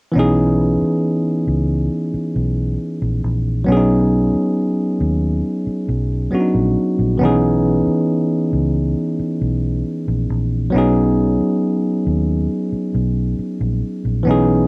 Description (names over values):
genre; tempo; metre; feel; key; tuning
contemporary R&B; 68 BPM; 4/4; straight; B major; A4 = 440 Hz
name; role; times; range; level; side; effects
bell-like tine electric piano; accompaniment; 0.1-14.7 s; D#3 to G#4; -16 LUFS; equal; cassette tape
vintage muted fingered electric bass; bass; 0.2-14.7 s; A#1 to D#2; -19 LUFS; equal; none
room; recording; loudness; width
light reverb; home recording on cassette; -15 LUFS; side -33 dB against mid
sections
0.1-14.7 A section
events
none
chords
0.1 C#m9/B; 3.7 B69; 7.2 C#m9/B; 10.7 B69